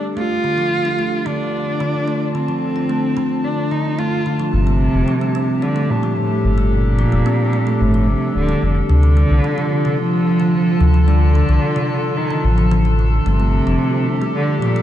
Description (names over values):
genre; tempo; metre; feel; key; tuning
IDM; 110 BPM; 4/4; straight; unclear; A4 = 440 Hz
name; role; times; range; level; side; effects
warbly tape-like pad; sustained chords; 0.0-14.8 s; D3 to A5; -23 LUFS; left 2 dB; chorus, built-in reverb
dark cello; melody; 0.2-14.8 s; A2 to F4; -19 LUFS; equal; digital delay
kalimba; arpeggios; 0.2-14.8 s; C3 to D4; -23 LUFS; right 2 dB; tape echo
round analog bass; bass; 4.5-13.8 s; D1 to D2; -15 LUFS; equal; none
room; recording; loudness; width
light reverb; dark, warm production; -15 LUFS; side -12 dB against mid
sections
0.0-4.5 A section; 4.5-14.8 B section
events
none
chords
0.0 Dm; 4.5 Gsus2; 8.9 Dm; 13.3 Gsus2